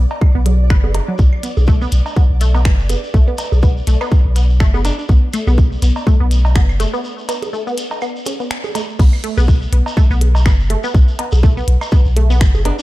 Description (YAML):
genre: minimal techno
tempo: 123 BPM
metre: 4/4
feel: swing 56% on 16ths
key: B minor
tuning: A4 = 439 Hz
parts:
  - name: punchy sub bass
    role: bass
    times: 0.0-12.7 s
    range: F#1 to B1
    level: -14 LUFS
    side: equal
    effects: sidechain pumping
  - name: flickering grainy texture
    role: texture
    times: 0.0-9.0 s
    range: D5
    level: -34 LUFS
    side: right 2 dB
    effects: built-in reverb, sidechain pumping
  - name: cowbell, woodblock and bongos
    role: percussion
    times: 0.1-12.8 s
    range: none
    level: -27 LUFS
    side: right 3 dB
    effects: studio reverb
  - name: electronic kick drum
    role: drums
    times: 0.2-12.5 s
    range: none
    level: -12 LUFS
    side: equal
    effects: studio reverb
  - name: resonant blip pluck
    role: riff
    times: 0.4-12.7 s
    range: F#3 to B4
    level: -24 LUFS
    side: equal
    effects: phaser, cassette tape, sidechain pumping, tape echo
  - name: minimal click drum kit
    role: drums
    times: 0.5-12.8 s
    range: crash cymbal, finger snaps, hi-hat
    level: -27 LUFS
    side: left 1 dB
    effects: studio reverb
  - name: shekere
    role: percussion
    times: 1.2-12.8 s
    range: none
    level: -32 LUFS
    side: equal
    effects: none
  - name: clear alto saxophone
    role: melody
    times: 4.8-5.1, 12.7-12.8 s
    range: D4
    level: -26 LUFS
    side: right 1 dB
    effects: none
room: digital ambience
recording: dark, warm production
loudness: -12 LUFS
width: side -17 dB against mid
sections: 0.0-9.0 A section; 9.0-12.8 B section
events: break 7.0-9.0; drop 9.0-12.8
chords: 0.0 Bm; 9.0 B7(no3)